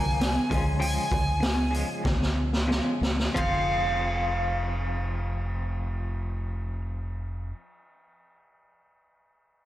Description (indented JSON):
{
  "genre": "quiet-loud alternative rock",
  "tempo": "89-102 BPM",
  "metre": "4/4",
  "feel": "straight",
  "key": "F minor",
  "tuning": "A4 = 440 Hz",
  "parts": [
    { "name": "biting lead guitar", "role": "melody", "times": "0.0-6.8 s", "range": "F5 to Ab5", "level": "-30 LUFS", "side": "equal", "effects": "overdrive, slapback echo" },
    { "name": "twangy electric guitar", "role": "arpeggios", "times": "0.0-7.6 s", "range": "Bb2 to C5", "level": "-35 LUFS", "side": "left 2 dB", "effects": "tremolo, slapback echo" },
    { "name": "growling fingered electric bass", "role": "bass", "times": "0.0-7.5 s", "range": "F1 to Db2", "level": "-30 LUFS", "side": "equal", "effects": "overdrive" },
    { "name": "raw garage drum kit", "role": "drums", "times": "0.2-3.5 s", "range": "hi-hat, kick drum, ride cymbal, snare drum", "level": "-28 LUFS", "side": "equal", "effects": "none" }
  ],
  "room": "moderate lush hall reverb, RT60 2.7 s",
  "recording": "big arena sound",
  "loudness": "-25 LUFS",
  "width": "side -14 dB against mid",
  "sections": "0.0-3.4 A section; 3.4-6.1 B section",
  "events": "slowing down 0.0-3.4; drum fill 2.0-3.4",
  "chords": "0.0 Bb5; 0.5 Db; 3.4 Fm"
}